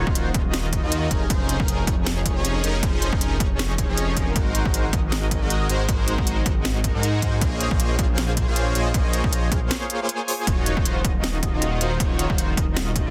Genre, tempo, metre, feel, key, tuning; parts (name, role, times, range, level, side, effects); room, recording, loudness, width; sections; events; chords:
future bass; 157 BPM; 4/4; swing 56% on 16ths, half-time; A4 = 440 Hz
soft supersaw; riff; 0.0-13.1 s; Eb3 to Ab5; -29 LUFS; equal; cassette tape, sidechain pumping, dub echo
detuned saw bass; bass; 0.0-13.1 s; Eb1 to Ab2; -27 LUFS; equal; chorus, sidechain pumping
electronic kick drum; drums; 0.1-13.0 s; -26 LUFS; equal; overdrive
trap drum kit; drums; 0.2-13.0 s; hi-hat, snare drum; -29 LUFS; equal
light reverb, digital ambience; dense, heavily limited modern master; -22 LUFS; mono
0.0-13.1 A section
break 9.7-10.5
0.0 Ebm; 1.1 Dbmaj7/F; 4.4 Ab7; 7.4 Bbm11; 10.5 Ebm7